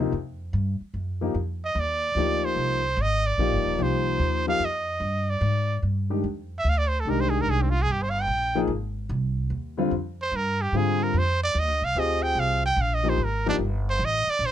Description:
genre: jazz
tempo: 147 BPM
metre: 3/4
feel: swing 67% on 8ths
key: F dorian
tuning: A4 = 440 Hz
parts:
  - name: warm concert grand piano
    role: accompaniment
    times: 0.0-13.6 s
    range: C3 to Ab4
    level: -26 LUFS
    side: left 4 dB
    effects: none
  - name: upright bass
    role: bass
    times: 0.0-14.5 s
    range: Eb1 to Ab2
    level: -26 LUFS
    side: equal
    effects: none
  - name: bright trumpet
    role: melody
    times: 1.6-14.5 s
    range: C4 to G5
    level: -25 LUFS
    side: right 2 dB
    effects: none
room: little or no reverb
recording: close, detailed microphones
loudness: -23 LUFS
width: side -11 dB against mid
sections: 0.0-14.5 A section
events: trumpet solo 0.0-14.5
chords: 0.0 Fsus2; 1.3 Cmadd9; 6.2 Fm69; 11.1 Cmadd9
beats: | 0.12 0.53 0.93 | 1.34 1.75 2.16 | 2.57 2.98 3.38 | 3.79 4.20 4.61 | 5.02 5.42 5.83 | 6.24 6.65 7.06 | 7.47 7.87 8.28 | 8.69 9.10 9.51 | 9.91 10.32 10.73 | 11.14 11.55 11.96 | 12.36 12.77 13.18 | 13.59 13.99 14.40

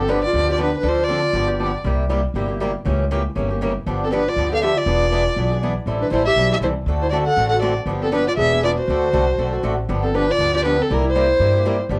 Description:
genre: acoustic string swing (jazz manouche)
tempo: 239 BPM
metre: 4/4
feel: swing 57% on 8ths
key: G mixolydian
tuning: A4 = 439 Hz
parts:
  - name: warm violin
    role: melody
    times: 0.0-1.8, 4.0-11.8 s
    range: A4 to F#5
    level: -23 LUFS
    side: equal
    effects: none
  - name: growling clarinet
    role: second line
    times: 0.0-1.8, 4.0-11.8 s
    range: C4 to A4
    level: -27 LUFS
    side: equal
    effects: none
  - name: picked steel-string acoustic guitar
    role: accompaniment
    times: 0.0-12.0 s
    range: C3 to B4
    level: -33 LUFS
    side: equal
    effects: none
  - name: picked swing-style acoustic guitar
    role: accompaniment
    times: 0.0-12.0 s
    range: C3 to A4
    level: -27 LUFS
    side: equal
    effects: none
  - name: upright bass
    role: bass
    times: 0.0-12.0 s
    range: E1 to G2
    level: -25 LUFS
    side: equal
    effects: none
room: moderate club reverb, RT60 0.5 s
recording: worn, warbling old tape, cassette tape, warbly pitch drift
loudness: -19 LUFS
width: mono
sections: 0.0-9.9 A section; 9.9-12.0 A section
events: none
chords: 0.0 G7; 0.8 Dm7; 1.3 G7; 1.8 C7; 2.9 C#dim7; 3.9 G7; 4.9 E7b9; 5.9 Am7; 6.9 D7; 7.9 G7; 8.4 E7; 8.9 D7; 9.9 G7; 10.9 C7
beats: 0.09 0.34 0.59 | 0.84 1.09 1.34 1.60 | 1.85 2.10 2.35 2.60 | 2.85 3.10 3.35 3.61 | 3.86 4.11 4.36 4.61 | 4.86 5.11 5.36 5.62 | 5.87 6.12 6.37 6.62 | 6.87 7.12 7.37 7.63 | 7.88 8.13 8.38 8.63 | 8.88 9.13 9.39 9.64 | 9.89 10.14 10.39 10.64 | 10.90 11.15 11.40 11.65 | 11.90

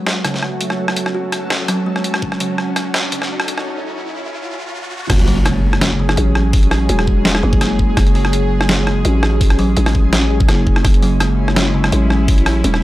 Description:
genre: half-time drum and bass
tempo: 167 BPM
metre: 4/4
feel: swing 53% on 16ths, half-time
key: F# minor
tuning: A4 = 440 Hz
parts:
  - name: bowed-like drone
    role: sustained chords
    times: 0.0-12.8 s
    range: F#3 to G#4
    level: -23 LUFS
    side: right 1 dB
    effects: built-in reverb, sidechain pumping
  - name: kalimba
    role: arpeggios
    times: 0.0-12.8 s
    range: C#3 to F#4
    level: -24 LUFS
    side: left 1 dB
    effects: vintage 12-bit sampler grit, tape echo
  - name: riser and impact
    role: sound effects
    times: 2.3-6.5 s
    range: none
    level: -25 LUFS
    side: equal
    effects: none
  - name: backwards swelling texture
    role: texture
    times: 0.0-12.8 s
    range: G#3 to A5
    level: -29 LUFS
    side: left 1 dB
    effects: built-in reverb
  - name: boom bap sampler-style drum kit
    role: drums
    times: 0.1-12.8 s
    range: crash cymbal, hi-hat, rim click, snare drum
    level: -19 LUFS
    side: equal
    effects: high-pass filter on hats, small room reverb, high-pass filter on snare, high-pass filter on cymbals
  - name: electronic kick drum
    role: drums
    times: 2.2-2.3, 5.1-12.4 s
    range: none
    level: -14 LUFS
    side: equal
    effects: overdrive, small room reverb
  - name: growling 808-style bass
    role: bass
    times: 5.1-12.8 s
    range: E1 to A1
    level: -16 LUFS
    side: equal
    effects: tube saturation
room: little or no reverb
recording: dry, gritty hardware recording, high-pass filter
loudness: -13 LUFS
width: side -16 dB against mid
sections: 0.0-5.1 A section; 5.1-12.8 B section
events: build-up 0.0-5.1; riser 2.3-5.1; break 3.7-5.1; drop 5.1-12.8; impact 5.1-6.5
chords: 0.0 F#m; 5.1 F#madd9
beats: 0.07 0.43 | 0.79 1.15 1.50 1.86 | 2.22 2.58 2.94 3.30 | 3.66 4.02 4.38 4.74 | 5.10 5.46 5.82 6.18 | 6.54 6.89 7.25 7.61 | 7.97 8.33 8.69 9.05 | 9.41 9.77 10.13 10.49 | 10.85 11.21 11.56 11.92 | 12.28 12.64

